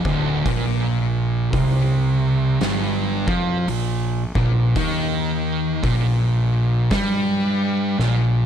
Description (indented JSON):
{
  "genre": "stoner and doom metal",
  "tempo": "56 BPM",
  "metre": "4/4",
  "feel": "swing 62% on 8ths",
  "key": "unclear",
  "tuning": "A4 = 445 Hz",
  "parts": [
    { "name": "thick fuzz guitar", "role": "riff", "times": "0.0-8.5 s", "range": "D2 to G3", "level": "-23 LUFS", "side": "left 7 dB", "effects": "distortion" },
    { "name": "thick fuzz guitar", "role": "riff", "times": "0.0-8.5 s", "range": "D2 to G3", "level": "-21 LUFS", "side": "right 4 dB", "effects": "distortion" },
    { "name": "fuzz fingered electric bass", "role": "bass", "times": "0.0-8.5 s", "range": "D1 to G2", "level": "-28 LUFS", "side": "left 1 dB", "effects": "overdrive, tube saturation" },
    { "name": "oversized low-tuned drum kit", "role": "drums", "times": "0.1-8.3 s", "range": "hi-hat, kick drum, snare drum", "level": "-27 LUFS", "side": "equal", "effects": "none" }
  ],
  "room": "small room ambience",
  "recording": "dark, warm production",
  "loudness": "-18 LUFS",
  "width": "side -9 dB against mid",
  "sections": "0.0-8.5 A section",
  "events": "drum fill 8.0-8.5",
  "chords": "0.5 Bb5"
}